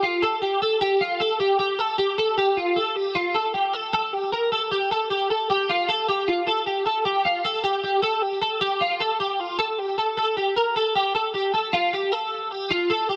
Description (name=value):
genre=indie pop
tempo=154 BPM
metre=4/4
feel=straight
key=F major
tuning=A4 = 441 Hz
part: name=twelve-string electric guitar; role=solo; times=0.0-13.2 s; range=F4 to Bb4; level=-23 LUFS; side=equal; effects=ensemble chorus
room=light reverb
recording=none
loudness=-23 LUFS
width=mono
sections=0.0-11.7 A section; 11.7-13.2 B section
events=none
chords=none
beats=0.03 0.42 | 0.81 1.20 1.59 1.98 | 2.37 2.76 3.15 3.54 | 3.93 4.32 4.71 5.10 | 5.49 5.88 6.27 6.66 | 7.05 7.44 7.83 8.22 | 8.61 9.00 9.39 9.78 | 10.17 10.56 10.95 11.34 | 11.73 12.12 12.51 12.90